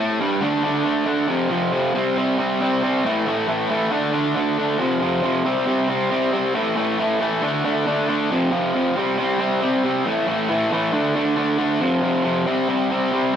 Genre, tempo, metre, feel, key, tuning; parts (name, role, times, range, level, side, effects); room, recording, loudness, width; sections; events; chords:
rock; 137 BPM; 4/4; straight; A4 = 440 Hz
raw garage guitar; solo; 0.0-13.3 s; F2 to D4; -18 LUFS; equal; overdrive, analog delay
moderate studio reverb, RT60 0.5 s; -18 LUFS; side -8 dB against mid
0.4-13.4 A section
half time 0.4-13.4
0.4 D5; 1.3 F5; 1.9 C5; 3.0 A5; 3.9 D5; 4.8 F5; 5.5 C5; 6.6 A5; 7.4 D5; 8.3 F5; 9.0 C5; 10.1 A5; 10.9 D5; 11.8 F5; 12.5 C5